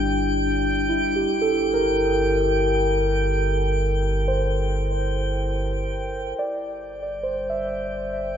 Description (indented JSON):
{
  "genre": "ambient",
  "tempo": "71 BPM",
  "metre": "3/4",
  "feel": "straight",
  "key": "unclear",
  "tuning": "A4 = 440 Hz",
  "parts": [
    { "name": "muted felt-like synth keys", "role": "arpeggios", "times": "0.0-8.4 s", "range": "D4 to E5", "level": "-23 LUFS", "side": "equal", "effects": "chorus, analog delay, shimmer reverb" },
    { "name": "warm sub bass", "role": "bass", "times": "0.0-8.4 s", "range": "G1", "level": "-26 LUFS", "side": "equal", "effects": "none" },
    { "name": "drifting glass-harmonics texture", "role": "texture", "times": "0.0-8.4 s", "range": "G5", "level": "-28 LUFS", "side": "equal", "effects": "chorus, built-in reverb, shimmer reverb" },
    { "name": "analog drone", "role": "drone", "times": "7.0-8.4 s", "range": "G3", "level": "-42 LUFS", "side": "equal", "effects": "chorus" }
  ],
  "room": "wet spring reverb, RT60 2.4 s",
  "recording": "echo-heavy mix",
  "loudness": "-20 LUFS",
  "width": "side -8 dB against mid",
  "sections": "0.0-6.4 A section; 6.4-8.4 B section",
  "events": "none",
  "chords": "0.0 G5; 1.3 C7/G; 6.4 Cadd9/G",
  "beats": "0.46 | 1.31 2.15 3.00 | 3.84 4.69 5.53 | 6.38 7.22 8.07"
}